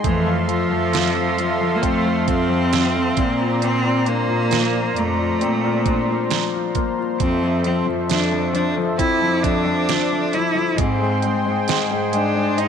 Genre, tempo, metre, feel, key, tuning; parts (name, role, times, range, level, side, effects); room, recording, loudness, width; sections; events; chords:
pop ballad; 67 BPM; 4/4; straight; F major; A4 = 440 Hz
rich cello; melody; 0.0-12.7 s; E3 to E4; -22 LUFS; right 1 dB
warm concert grand piano; accompaniment; 0.0-12.7 s; Bb2 to F4; -24 LUFS; left 11 dB
warm analog pad; sustained chords; 0.0-12.7 s; Ab4 to D6; -24 LUFS; right 1 dB; chorus
rich studio cello section; bass; 0.0-12.7 s; F2 to Bb2; -25 LUFS; right 2 dB
pop drum kit; drums; 0.0-12.7 s; hi-hat, kick drum, snare drum; -24 LUFS; right 5 dB
light reverb; 1960s-style stereo; -17 LUFS; side -7 dB against mid
0.0-12.7 A section
0.0 Fmaj7; 3.2 Bbadd9; 7.2 Fmaj7; 10.8 Abmaj7